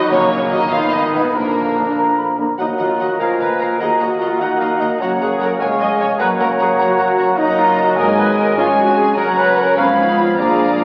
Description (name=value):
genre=quick classical-period movement for symphony orchestra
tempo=100 BPM (dotted quarters)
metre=6/8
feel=rubato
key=Eb minor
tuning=A4 = 440 Hz
part: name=rich chamber violin section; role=melody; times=0.0-10.8 s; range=Bb4 to Cb6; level=-26 LUFS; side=equal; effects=none
part: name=clear chamber violin section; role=second line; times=0.0-10.8 s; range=Bb3 to Ab5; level=-29 LUFS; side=equal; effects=none
part: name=flute section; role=second line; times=0.0-10.8 s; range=Gb5 to Cb6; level=-23 LUFS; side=equal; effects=none
part: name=warm clarinet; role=second line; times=0.0-10.8 s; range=Bb3 to Gb5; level=-24 LUFS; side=equal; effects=none
part: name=warm oboe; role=second line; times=0.0-10.8 s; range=F#4 to Ab5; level=-29 LUFS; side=equal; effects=none
part: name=mellow bassoon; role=accompaniment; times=0.0-10.8 s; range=Eb3 to Bb3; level=-26 LUFS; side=equal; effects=none
part: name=rich chamber viola section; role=accompaniment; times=0.0-10.8 s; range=D3 to Eb5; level=-24 LUFS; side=equal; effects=none
part: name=clear chamber double bass section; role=bass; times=0.0-10.8 s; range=F1 to Eb2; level=-38 LUFS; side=equal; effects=none
part: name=rich studio cello section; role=bass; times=0.0-10.8 s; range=D2 to F3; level=-30 LUFS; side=equal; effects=none
part: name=mellow French horn section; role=sustained chords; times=0.5-10.8 s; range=F3 to Gb4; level=-23 LUFS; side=equal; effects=none
room=wet scoring stage reverb, RT60 1.9 s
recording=very old 78 rpm record, vinyl crackle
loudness=-16 LUFS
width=mono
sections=0.0-2.6 A section; 2.6-10.8 B section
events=none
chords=0.1 Gb/Bb; 0.7 Abm; 1.3 Bb; 2.6 Ebm; 3.2 Bb; 3.8 Ebm; 5.0 Gb; 5.6 Db/F; 6.2 Gb; 7.4 Ebm/Gb; 8.0 Ab5; 8.6 Db/F; 9.2 Gb; 9.8 Fdim/Ab